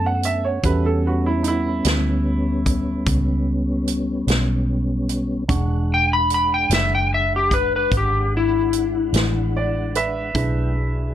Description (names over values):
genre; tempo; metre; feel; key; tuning
slow blues; 49 BPM (dotted quarters); 12/8; straight; E mixolydian; A4 = 440 Hz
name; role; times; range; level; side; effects
electric slide guitar; melody; 0.0-9.9 s; E4 to B5; -19 LUFS; left 3 dB; none
clear upright piano; second line; 0.0-11.1 s; D#4 to F#5; -25 LUFS; right 4 dB; analog delay
dark grand piano; accompaniment; 0.0-11.1 s; G#3 to C#6; -29 LUFS; right 4 dB; none
mellow tonewheel organ; sustained chords; 0.0-11.1 s; F#3 to G5; -26 LUFS; left 1 dB; slow rotary speaker, chorus vibrato
vintage muted fingered electric bass; bass; 0.0-11.1 s; E1 to F#2; -22 LUFS; equal; none
natural country drum kit; drums; 0.2-10.5 s; hi-hat, kick drum, snare drum; -23 LUFS; equal; none
room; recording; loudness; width
light reverb; dark, warm production; -18 LUFS; side -11 dB against mid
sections
0.0-11.1 A section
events
none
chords
0.0 A13; 5.5 E13